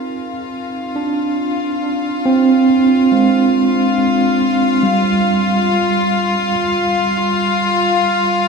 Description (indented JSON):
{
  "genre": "ambient",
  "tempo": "70 BPM",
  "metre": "4/4",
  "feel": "straight",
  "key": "Ab lydian",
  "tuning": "A4 = 440 Hz",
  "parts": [
    { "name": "overdriven tine electric piano", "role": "arpeggios", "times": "0.0-8.5 s", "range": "G3 to Eb4", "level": "-15 LUFS", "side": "right 3 dB", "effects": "fast tremolo, dub echo, shimmer reverb" },
    { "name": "clear chamber violin section", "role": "texture", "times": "0.0-8.5 s", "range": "F4 to F5", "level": "-18 LUFS", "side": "left 4 dB", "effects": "shimmer reverb" }
  ],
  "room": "wet plate reverb, RT60 3.7 s",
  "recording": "echo-heavy mix",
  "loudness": "-13 LUFS",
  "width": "side -4 dB against mid",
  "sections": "0.0-8.5 A section",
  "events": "fade-in on tine electric piano 0.0-8.5; fade-in on violin section 0.0-8.5",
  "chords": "0.0 Ab6; 4.8 Fsus2"
}